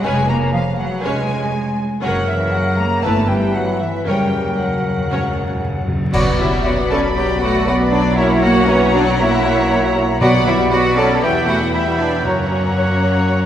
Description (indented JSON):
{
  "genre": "classical, dramatic, fast romantic movement for symphony orchestra",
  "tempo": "118 BPM",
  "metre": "4/4",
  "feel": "straight",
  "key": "B minor",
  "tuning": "A4 = 442 Hz",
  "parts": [
    { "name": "rich symphonic violin section", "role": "melody", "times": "0.0-13.5 s", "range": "B4 to A5", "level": "-27 LUFS", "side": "left 3 dB", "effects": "none" },
    { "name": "hollow concert flute", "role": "second line", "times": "0.0-13.3 s", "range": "E5 to B5", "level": "-28 LUFS", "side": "left 2 dB", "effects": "none" },
    { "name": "warm clarinet", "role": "second line", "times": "0.0-13.4 s", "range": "A#4 to E5", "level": "-27 LUFS", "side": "left 1 dB", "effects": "none" },
    { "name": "warm symphonic violin section", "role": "second line", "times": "0.0-13.5 s", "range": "C#5 to B5", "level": "-26 LUFS", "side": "left 2 dB", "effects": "none" },
    { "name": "mellow bassoon", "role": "accompaniment", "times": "0.0-13.4 s", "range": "C#3 to F#3", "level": "-26 LUFS", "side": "right 1 dB", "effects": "none" },
    { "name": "rich symphonic viola section", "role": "accompaniment", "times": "0.0-13.5 s", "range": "E3 to B4", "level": "-23 LUFS", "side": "equal", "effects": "none" },
    { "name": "dark French horn section", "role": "sustained chords", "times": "0.0-13.5 s", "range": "E3 to F#4", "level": "-25 LUFS", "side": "left 3 dB", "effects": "none" },
    { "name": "rich symphonic cello section", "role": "bass", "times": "0.0-13.5 s", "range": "E3 to A4", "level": "-21 LUFS", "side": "right 1 dB", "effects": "none" },
    { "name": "rich symphonic double bass section", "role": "bass", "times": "0.0-13.5 s", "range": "E#1 to F#2", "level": "-22 LUFS", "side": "right 1 dB", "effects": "none" },
    { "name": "cymbal swell, clash cymbals and concert bass drum", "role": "percussion", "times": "2.0-7.1 s", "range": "none", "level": "-26 LUFS", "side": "equal", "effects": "none" },
    { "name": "timpani", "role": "percussion", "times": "4.1-6.1, 10.2-13.0 s", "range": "F#2 to B2", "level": "-24 LUFS", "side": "equal", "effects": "none" },
    { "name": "mellow trombone section", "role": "sustained chords", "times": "6.1-13.5 s", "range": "F#2 to B3", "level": "-26 LUFS", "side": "right 2 dB", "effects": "none" },
    { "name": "warm trumpet", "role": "stabs", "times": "6.1-13.5 s", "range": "C#5 to G5", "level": "-24 LUFS", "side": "right 1 dB", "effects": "none" }
  ],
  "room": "wet concert hall reverb, RT60 2.1 s",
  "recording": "recorded in a church or concert hall, vinyl crackle",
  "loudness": "-14 LUFS",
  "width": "side -10 dB against mid",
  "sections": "0.0-6.1 A section; 6.1-13.5 B section",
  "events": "timpani fill 4.1-6.1; band accent 6.1-6.7",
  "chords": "0.0 C#7/E#; 2.0 F#; 3.0 Em/G; 4.1 F#; 6.1 Bm; 8.2 F#7/B; 10.2 Bm; 11.2 Em; 12.3 F#"
}